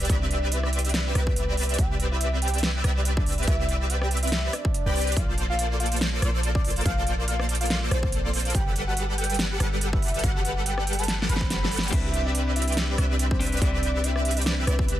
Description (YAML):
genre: future bass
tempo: 142 BPM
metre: 4/4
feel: swing 55% on 16ths, half-time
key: C lydian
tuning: A4 = 440 Hz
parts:
  - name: supersaw chords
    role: riff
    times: 0.0-15.0 s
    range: G3 to G5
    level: -30 LUFS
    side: equal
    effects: ensemble chorus, sidechain pumping
  - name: warm 808-style bass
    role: bass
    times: 0.0-15.0 s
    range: G1 to C2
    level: -26 LUFS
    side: equal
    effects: tube saturation, sidechain pumping
  - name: big-room dance drum kit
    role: drums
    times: 0.0-15.0 s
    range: crash cymbal, hi-hat, rim click, snare drum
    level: -29 LUFS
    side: right 1 dB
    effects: none
  - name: impact and swell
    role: sound effects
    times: 0.0-0.1, 11.3-11.9 s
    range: none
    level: -43 LUFS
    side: right 1 dB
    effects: none
  - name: warm velvety synth lead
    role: melody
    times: 0.1-15.0 s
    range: B4 to B5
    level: -33 LUFS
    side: equal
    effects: chorus, tremolo, sidechain pumping, tape echo
  - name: electronic kick drum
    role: drums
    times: 0.1-14.9 s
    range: none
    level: -26 LUFS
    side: equal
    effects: none
  - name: twelve-string electric guitar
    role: accompaniment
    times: 11.9-14.9 s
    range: G3 to B4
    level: -32 LUFS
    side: left 4 dB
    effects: sidechain pumping
room: digital ambience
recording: dense, heavily limited modern master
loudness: -22 LUFS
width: side -13 dB against mid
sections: 0.0-15.0 A section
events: drum fill 11.1-11.9; swell 11.3-11.9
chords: 0.0 Cmaj7; 5.2 Bbmaj7; 8.5 Gmaj7; 11.9 Cmaj7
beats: | 0.10 0.52 0.94 1.36 | 1.78 2.21 2.63 3.05 | 3.48 3.90 4.32 4.74 | 5.17 5.59 6.01 6.43 | 6.86 7.28 7.70 8.12 | 8.55 8.97 9.39 9.81 | 10.24 10.66 11.08 11.50 | 11.93 12.35 12.77 13.19 | 13.62 14.04 14.46 14.88